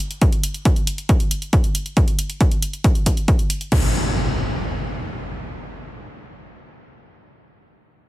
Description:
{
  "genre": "uplifting trance",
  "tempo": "137 BPM",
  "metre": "4/4",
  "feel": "straight",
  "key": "none",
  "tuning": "none",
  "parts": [
    { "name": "big-room dance drum kit", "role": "drums", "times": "0.0-3.8 s", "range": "crash cymbal, hi-hat", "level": "-28 LUFS", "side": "equal", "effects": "small room ambience" },
    { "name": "electronic kick drum", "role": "drums", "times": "0.2-3.8 s", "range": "none", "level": "-17 LUFS", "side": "equal", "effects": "small room ambience" },
    { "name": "impact", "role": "sound effects", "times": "3.7-6.9 s", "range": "none", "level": "-24 LUFS", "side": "equal", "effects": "none" }
  ],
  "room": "digital ambience",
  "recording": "heavily compressed radio sound",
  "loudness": "-17 LUFS",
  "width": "side -16 dB against mid",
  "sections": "0.0-3.7 A section; 3.7-7.2 B section",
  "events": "none",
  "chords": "none",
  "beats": "| 0.22 0.65 1.09 1.53 | 1.97 2.41 2.84 3.28 | 3.72 4.16 4.59 5.03 | 5.47 5.91 6.35 6.79"
}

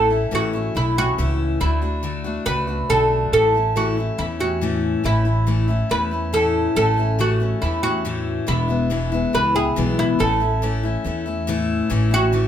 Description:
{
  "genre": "honky-tonk and classic country",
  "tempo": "140 BPM",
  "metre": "4/4",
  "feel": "straight",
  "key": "A major",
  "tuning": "A4 = 439 Hz",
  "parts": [
    { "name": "oud", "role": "melody", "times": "0.0-12.5 s", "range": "E4 to B4", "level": "-21 LUFS", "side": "right 1 dB", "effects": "none" },
    { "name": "picked steel-string acoustic guitar", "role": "accompaniment", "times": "0.0-12.5 s", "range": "E2 to F#4", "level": "-23 LUFS", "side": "left 4 dB", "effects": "none" },
    { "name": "upright bass", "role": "bass", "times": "0.0-12.5 s", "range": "E1 to E2", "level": "-23 LUFS", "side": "right 1 dB", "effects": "none" }
  ],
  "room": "moderate studio reverb, RT60 0.5 s",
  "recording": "band playing live in one room",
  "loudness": "-18 LUFS",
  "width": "side -10 dB against mid",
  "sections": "0.0-11.9 A section",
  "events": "none",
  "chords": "0.0 A; 1.6 D; 3.3 A; 8.5 E; 10.2 A",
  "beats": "0.32 0.75 1.18 | 1.61 2.04 2.47 2.90 | 3.33 3.76 4.19 4.62 | 5.05 5.48 5.91 6.34 | 6.77 7.20 7.62 8.05 | 8.48 8.91 9.34 9.77 | 10.20 10.62 11.05 11.48 | 11.91 12.34"
}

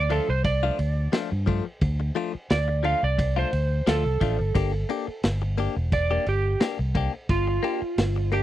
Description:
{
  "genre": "straight-eighth soul blues",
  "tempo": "88 BPM",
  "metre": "4/4",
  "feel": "swing 54% on 16ths",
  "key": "D minor",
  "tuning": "A4 = 440 Hz",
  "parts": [
    { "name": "electric slide guitar", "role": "second line", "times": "0.0-8.4 s", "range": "F4 to F5", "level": "-27 LUFS", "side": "right 3 dB", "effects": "none" },
    { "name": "fingered electric bass", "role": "bass", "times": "0.0-8.4 s", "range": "E1 to G2", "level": "-25 LUFS", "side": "equal", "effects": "none" },
    { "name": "direct-recorded clean electric guitar", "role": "stabs", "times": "0.1-8.4 s", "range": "F3 to G4", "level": "-28 LUFS", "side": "left 8 dB", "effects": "phaser" },
    { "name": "crunchy breakbeat drum kit", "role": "drums", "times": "0.1-8.4 s", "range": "kick drum, ride cymbal, snare drum", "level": "-28 LUFS", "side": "equal", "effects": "none" }
  ],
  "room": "little or no reverb",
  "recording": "dry, close 1970s-style studio recording",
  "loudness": "-22 LUFS",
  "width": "side -13 dB against mid",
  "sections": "0.0-8.4 A section",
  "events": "electric slide guitar solo 0.0-8.4",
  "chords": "0.0 Dm; 4.6 Gm",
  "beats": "0.45 1.13 | 1.82 2.50 3.19 3.87 | 4.56 5.24 5.93 6.61 | 7.30 7.98"
}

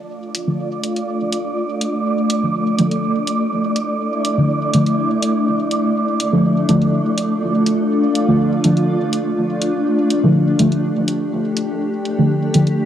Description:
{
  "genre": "dub techno",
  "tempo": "123 BPM",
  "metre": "4/4",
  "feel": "straight",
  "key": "D minor",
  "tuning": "A4 = 441 Hz",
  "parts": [
    { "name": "granular cloud pad", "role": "sustained chords", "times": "0.1-12.9 s", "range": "A3 to G4", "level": "-19 LUFS", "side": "equal", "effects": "built-in reverb, cassette tape" },
    { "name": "wind-like tuned noise texture", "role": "texture", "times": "0.0-12.9 s", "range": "D5", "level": "-25 LUFS", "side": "right 5 dB", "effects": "built-in reverb, cassette tape" },
    { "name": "electronic hi-hat", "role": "drums", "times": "0.3-12.8 s", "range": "none", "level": "-24 LUFS", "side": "equal", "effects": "none" },
    { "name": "deep mellow chord stab", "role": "stabs", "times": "0.5-12.9 s", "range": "D3 to A3", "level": "-18 LUFS", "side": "equal", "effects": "chorus, phaser, cassette tape, dub echo" }
  ],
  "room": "moderate spring reverb, RT60 1.9 s",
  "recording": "home recording on cassette",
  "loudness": "-15 LUFS",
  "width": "side -10 dB against mid",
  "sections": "0.0-12.9 A section",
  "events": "filter sweep on ambient pad 0.0-12.9",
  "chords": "0.0 Dm",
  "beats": "| 0.10 0.59 1.08 1.57 | 2.05 2.54 3.03 3.52 | 4.00 4.49 4.98 5.47 | 5.96 6.45 6.93 7.42 | 7.91 8.40 8.88 9.37 | 9.86 10.35 10.84 11.32 | 11.81 12.30 12.79"
}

